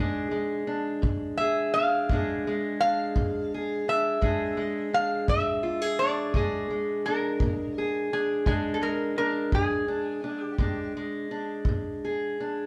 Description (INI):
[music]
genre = acoustic country blues, solo or duo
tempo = 56 BPM (dotted quarters)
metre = 12/8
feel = straight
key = Bb mixolydian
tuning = A4 = 440 Hz
[part]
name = fingerpicked steel-string acoustic guitar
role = accompaniment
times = 0.0-12.7 s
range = Bb2 to Ab4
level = -31 LUFS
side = equal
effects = none
[part]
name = kick drum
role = drums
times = 1.0-11.8 s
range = none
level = -30 LUFS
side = equal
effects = none
[part]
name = metal-body resonator slide guitar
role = melody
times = 1.4-10.9 s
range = Ab4 to F5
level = -30 LUFS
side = equal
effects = none
[sound]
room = moderate studio reverb, RT60 0.7 s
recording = heard from further back in the room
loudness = -28 LUFS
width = mono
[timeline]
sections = 0.0-12.7 A section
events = none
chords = 0.0 Bb7